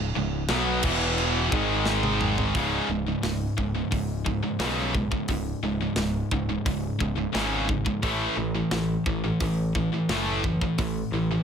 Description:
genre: heavy metal.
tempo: 87 BPM.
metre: 4/4.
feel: straight.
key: C# minor.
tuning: A4 = 439 Hz.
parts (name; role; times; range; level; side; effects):
high-gain distorted guitar; riff; 0.0-11.4 s; C#2 to B3; -28 LUFS; left 10 dB; distortion.
tight distorted guitar; riff; 0.0-11.4 s; C#2 to B3; -28 LUFS; right 10 dB; distortion.
modern bright picked electric bass; bass; 0.0-11.4 s; C#1 to B1; -31 LUFS; equal; none.
tight metal drum kit; drums; 0.5-10.9 s; china cymbal, crash cymbal, hi-hat, kick drum, snare drum, toms; -30 LUFS; equal; none.
room: light reverb.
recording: none.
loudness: -24 LUFS.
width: side -7 dB against mid.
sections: 0.0-2.5 A section; 2.5-11.4 B section.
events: drum fill 1.9-2.5.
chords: 0.0 C#5; 0.8 E5; 1.5 G#5; 2.5 C#5; 8.0 A5.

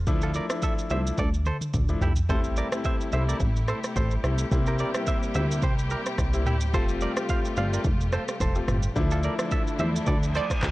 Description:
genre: afrobeats.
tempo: 108 BPM.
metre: 4/4.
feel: swing 55% on 16ths.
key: D minor.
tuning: A4 = 440 Hz.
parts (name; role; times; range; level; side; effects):
plucky analog bass; bass; 0.0-10.7 s; F1 to E2; -26 LUFS; equal; none.
clear grand piano; accompaniment; 0.1-10.1 s; F3 to F4; -31 LUFS; left 3 dB; none.
afro-pop drum kit; drums; 0.1-10.7 s; handclaps, kick drum, rim click, shaker, toms; -27 LUFS; equal; none.
direct-recorded clean electric guitar; riff; 0.2-10.5 s; E4 to F5; -33 LUFS; right 3 dB; tape echo.
muted studio string section; sustained chords; 2.3-10.7 s; C3 to G4; -34 LUFS; left 1 dB; none.
reverse cymbal; sound effects; 10.3-10.7 s; none; -34 LUFS; equal; none.
analog pluck; melody; 10.4-10.7 s; D5; -29 LUFS; right 7 dB; chorus.
room: digital ambience.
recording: dry, gritty hardware recording, cassette tape.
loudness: -23 LUFS.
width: side -18 dB against mid.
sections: 0.0-2.3 A section; 2.3-10.7 B section.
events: drum fill 1.2-2.3; reverse cymbal 10.3-10.7.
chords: 0.1 Dmadd9; 2.3 Am7; 4.5 C7; 6.7 Fadd9; 9.0 Dmadd9.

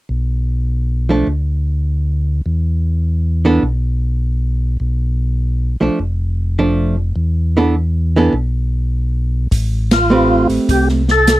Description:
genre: soul jazz organ trio.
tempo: 102 BPM.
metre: 4/4.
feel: swing 69% on 8ths.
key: unclear.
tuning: A4 = 436 Hz.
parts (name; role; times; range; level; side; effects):
mellow tonewheel organ; bass; 0.1-11.4 s; F1 to E2; -16 LUFS; equal; slow rotary speaker.
archtop guitar, miked and amplified; accompaniment; 1.1-11.0 s; E3 to B4; -14 LUFS; right 2 dB; none.
swinging big-band drum kit; drums; 9.5-11.4 s; hi-hat, kick drum, ride cymbal, snare drum; -18 LUFS; equal; none.
percussive tonewheel organ; melody; 9.9-11.4 s; F4 to A4; -13 LUFS; equal; overdrive, chorus vibrato, slow rotary speaker.
room: light reverb.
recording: dry, close 1970s-style studio recording.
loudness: -14 LUFS.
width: side -16 dB against mid.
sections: 0.1-9.5 A section; 9.5-11.4 B section.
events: band accent 9.8.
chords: 0.1 Bm; 2.5 E5; 4.8 Bm7b5; 7.2 E7sus4; 9.5 Am9.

